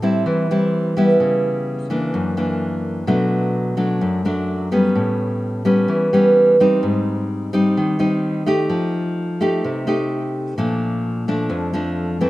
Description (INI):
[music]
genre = bossa nova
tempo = 128 BPM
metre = 4/4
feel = straight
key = unclear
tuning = A4 = 440 Hz
[part]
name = nylon-string guitar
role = solo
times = 0.0-12.3 s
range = F2 to G4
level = -17 LUFS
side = equal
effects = none
[sound]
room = little or no reverb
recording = recorded outdoors, with no room sound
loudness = -17 LUFS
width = side -17 dB against mid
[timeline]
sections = 0.0-12.3 A section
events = none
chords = 0.0 Am7; 1.2 C#m7b5; 2.1 F#aug7; 3.1 Bm7; 5.0 A9; 6.8 Abmaj7; 8.7 F9; 10.6 Bbmaj7